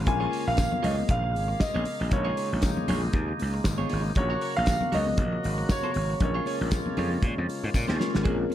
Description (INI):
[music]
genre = disco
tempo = 117 BPM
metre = 4/4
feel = swing 56% on 16ths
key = Bb minor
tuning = A4 = 438 Hz
[part]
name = tine electric piano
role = accompaniment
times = 0.0-8.5 s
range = Ab3 to Bb4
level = -34 LUFS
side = left 4 dB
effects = phaser
[part]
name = bright tonewheel organ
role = sustained chords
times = 0.0-8.2 s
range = Db3 to F5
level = -35 LUFS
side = equal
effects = slow rotary speaker
[part]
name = gritty slap bass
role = bass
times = 0.0-8.4 s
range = Ab1 to Bb2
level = -29 LUFS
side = equal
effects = overdrive
[part]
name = dark grand piano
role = melody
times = 0.1-8.0 s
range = Db5 to Ab5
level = -31 LUFS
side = right 1 dB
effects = none
[part]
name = clean electric guitar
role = accompaniment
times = 0.1-8.5 s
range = Db4 to Db5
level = -37 LUFS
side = right 7 dB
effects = wide subtle chorus
[part]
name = warm soul drum kit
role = drums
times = 0.1-8.5 s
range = hi-hat, kick drum, snare drum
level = -30 LUFS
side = equal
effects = none
[part]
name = congas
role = percussion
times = 0.6-8.5 s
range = none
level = -35 LUFS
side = left 3 dB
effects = none
[part]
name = tambourine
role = percussion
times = 0.6-7.9 s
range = none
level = -44 LUFS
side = left 8 dB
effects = none
[sound]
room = light reverb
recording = dark, warm production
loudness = -24 LUFS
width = side -12 dB against mid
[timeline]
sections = 0.0-8.3 A section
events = drum fill 7.7-8.3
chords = 0.1 Bbm7; 4.2 Gb/Bb; 6.2 Bbm7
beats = | 0.07 0.59 1.10 1.61 | 2.12 2.63 3.14 3.65 | 4.17 4.68 5.19 5.70 | 6.21 6.72 7.24 7.75 | 8.26